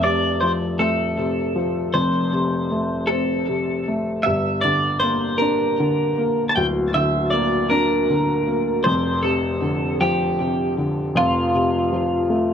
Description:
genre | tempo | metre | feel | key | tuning
pop | 52 BPM (dotted quarters) | 6/8 | straight | F major | A4 = 440 Hz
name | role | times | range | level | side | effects
twelve-string electric guitar | melody | 0.0-12.5 s | F4 to A5 | -21 LUFS | right 1 dB | digital delay
warm baby grand piano | accompaniment | 0.0-12.5 s | D1 to D4 | -21 LUFS | left 1 dB | none
room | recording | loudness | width
moderate studio reverb, RT60 0.5 s | none | -18 LUFS | side -8 dB against mid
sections
0.0-12.5 A section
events
none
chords
0.0 F; 4.3 Gm; 8.9 Dm7/F; 11.2 F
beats
0.81 | 1.96 3.11 | 4.26 5.41 | 6.56 7.71 | 8.86 10.01 | 11.16 12.31

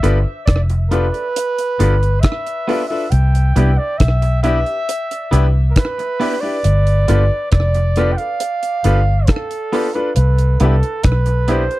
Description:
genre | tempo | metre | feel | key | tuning
lovers rock reggae | 68 BPM | 4/4 | straight | C major | A4 = 439 Hz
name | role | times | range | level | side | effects
warm flugelhorn | melody | 0.0-11.8 s | A4 to G5 | -21 LUFS | right 2 dB | tape echo
clear grand piano | accompaniment | 0.0-11.8 s | D4 to B4 | -21 LUFS | left 4 dB | none
twangy electric guitar | stabs | 0.0-11.6 s | B3 to G4 | -22 LUFS | right 3 dB | none
vintage muted fingered electric bass | bass | 0.0-11.7 s | F1 to C2 | -14 LUFS | equal | none
deep reggae drum kit | drums | 0.0-11.8 s | hi-hat, kick drum, rim click | -17 LUFS | equal | slapback echo
room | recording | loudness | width
little or no reverb | dry, close 1970s-style studio recording | -14 LUFS | side -17 dB against mid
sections
0.0-11.8 A section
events
none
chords
0.0 G7; 3.1 Cmaj7; 6.6 G7; 10.2 Cmaj7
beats
0.47 1.35 2.23 | 3.12 4.00 4.88 5.76 | 6.64 7.52 8.40 9.29 | 10.17 11.05

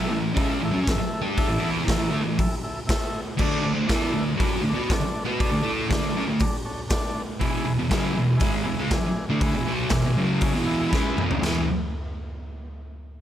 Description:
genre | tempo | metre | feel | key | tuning
garage rock duo or trio | 119 BPM | 4/4 | straight | E mixolydian | A4 = 441 Hz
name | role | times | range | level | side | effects
combo organ | sustained chords | 0.0-11.7 s | D4 to B5 | -33 LUFS | left 1 dB | none
thick fuzz guitar | riff | 0.0-11.6 s | E2 to B4 | -23 LUFS | equal | distortion
raw garage drum kit | drums | 0.4-11.6 s | crash cymbal, hi-hat, kick drum, snare drum, toms | -26 LUFS | equal | none
room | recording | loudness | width
small room reverb | none | -22 LUFS | side -11 dB against mid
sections
0.0-11.4 A section; 11.4-13.2 B section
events
transistor combo organ fill 10.4-11.4; drum fill 10.9-11.4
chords
0.0 A5; 3.4 D5; 7.4 E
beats
0.37 0.87 | 1.37 1.88 2.38 2.88 | 3.38 3.88 4.38 4.89 | 5.39 5.89 6.39 6.89 | 7.40 7.90 8.40 8.90 | 9.41 9.91 10.42 10.92 | 11.43

